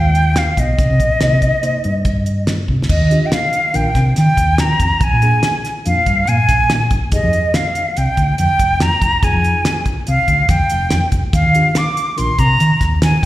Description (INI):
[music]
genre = progressive instrumental, band music in an uneven meter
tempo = 142 BPM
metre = 5/4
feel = straight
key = unclear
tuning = A4 = 440 Hz
[part]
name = jazz flute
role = melody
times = 0.0-13.3 s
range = Eb5 to D6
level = -16 LUFS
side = equal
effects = slapback echo
[part]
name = mellow tine electric piano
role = accompaniment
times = 0.0-12.3 s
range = Bb2 to C5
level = -25 LUFS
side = left 1 dB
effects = slapback echo
[part]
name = hollow-body short-scale fingered electric bass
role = bass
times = 0.0-13.3 s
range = F1 to Eb3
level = -16 LUFS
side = equal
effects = none
[part]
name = damped 70s drum kit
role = drums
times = 0.1-13.3 s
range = crash cymbal, hi-hat, kick drum, snare drum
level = -19 LUFS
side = equal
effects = none
[sound]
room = light reverb, studio ambience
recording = live gig heard through the venue's PA, recital hall reverb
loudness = -12 LUFS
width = side -15 dB against mid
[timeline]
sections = 0.0-2.9 A section; 2.9-13.3 B section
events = drum fill 2.7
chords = 0.0 Ab6; 0.8 Cm7; 2.9 Ebmaj9; 5.0 Bb7; 7.1 Fm9; 11.3 Ebmaj7sus2